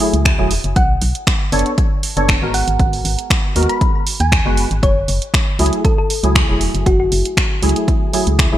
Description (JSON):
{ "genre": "deep house", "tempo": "118 BPM", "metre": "4/4", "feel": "swing 53% on 16ths", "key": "F# minor", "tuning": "A4 = 440 Hz", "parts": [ { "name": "percussive organ stab", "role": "stabs", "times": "0.0-8.6 s", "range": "F#3 to C#5", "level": "-20 LUFS", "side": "equal", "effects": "ensemble chorus, sidechain pumping, ping-pong delay" }, { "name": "punchy analog drum machine", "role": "drums", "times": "0.0-8.5 s", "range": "finger snaps, hi-hat", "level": "-20 LUFS", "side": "equal", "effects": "studio reverb, gated reverb" }, { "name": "organ-like FM bass", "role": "bass", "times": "0.1-8.6 s", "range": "E1 to D#2", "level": "-18 LUFS", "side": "equal", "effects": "sidechain pumping" }, { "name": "electronic kick drum", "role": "drums", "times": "0.3-8.5 s", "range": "none", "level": "-17 LUFS", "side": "equal", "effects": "overdrive, studio reverb" }, { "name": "thumb-piano-like synth pluck", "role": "melody", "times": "0.8-7.1 s", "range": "F#4 to B5", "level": "-22 LUFS", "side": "equal", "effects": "chorus, ping-pong delay" } ], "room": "digital ambience", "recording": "bright 1980s-style digital production", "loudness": "-13 LUFS", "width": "side -13 dB against mid", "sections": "0.0-8.6 A section", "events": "none", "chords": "0.0 F#m9; 0.8 Bm9; 2.5 G#m9; 4.8 F#m9" }